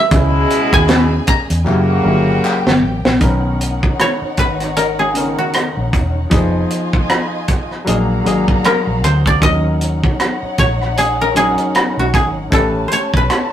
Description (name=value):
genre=lush 1970s-style soul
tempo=77 BPM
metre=4/4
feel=swing 58% on 16ths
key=B major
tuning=A4 = 441 Hz
part: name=koto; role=melody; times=0.0-13.5 s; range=F#4 to A#5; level=-16 LUFS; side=equal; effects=none
part: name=warm studio string section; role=second line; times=0.0-13.5 s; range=D#4 to A#5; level=-25 LUFS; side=left 2 dB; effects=none
part: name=warm grand piano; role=accompaniment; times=0.0-13.5 s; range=C#3 to B4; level=-20 LUFS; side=left 1 dB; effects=none
part: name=clear horn section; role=stabs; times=0.1-2.8 s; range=B2 to F#4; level=-18 LUFS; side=equal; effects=none
part: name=vintage muted fingered electric bass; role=bass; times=0.1-13.3 s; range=E1 to E2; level=-18 LUFS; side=equal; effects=none
part: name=tight funk drum kit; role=drums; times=0.1-13.5 s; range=hi-hat, kick drum, rim click, snare drum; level=-16 LUFS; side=right 1 dB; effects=none
part: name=group handclap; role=percussion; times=0.9-2.7 s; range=none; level=-25 LUFS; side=left 1 dB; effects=none
room=moderate studio reverb, RT60 0.7 s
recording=rough rehearsal-room recording, tube saturation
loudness=-13 LUFS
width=side -10 dB against mid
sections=0.0-3.2 A section; 3.2-13.5 B section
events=drum fill 1.7-3.2; koto solo 3.2-13.5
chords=0.1 C#m9; 1.7 F#7b9; 3.2 Bmaj9; 6.3 Fm7b5; 7.9 A#7b13; 9.4 D#m7; 12.5 A9